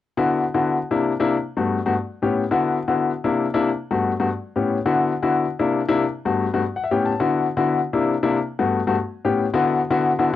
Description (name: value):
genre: jazz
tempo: 205 BPM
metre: 4/4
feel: straight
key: D major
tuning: A4 = 440 Hz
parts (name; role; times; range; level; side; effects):
- warm grand piano; solo; 0.2-10.4 s; G2 to A5; -19 LUFS; left 4 dB; none
room: moderate small room ambience, RT60 0.5 s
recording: home recording on cassette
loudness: -19 LUFS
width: side -12 dB against mid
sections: 0.2-9.5 A section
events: grand piano fill 6.6-7.2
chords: 0.2 D6; 0.8 C7; 1.3 Gmaj7; 1.9 A7; 2.5 D6; 3.1 C7; 3.7 Gmaj7; 4.3 A7; 4.9 D6; 5.4 C7; 6.0 Gmaj7; 6.6 A7; 7.2 D6; 7.8 C7; 8.4 Gmaj7; 8.9 A7; 9.5 D6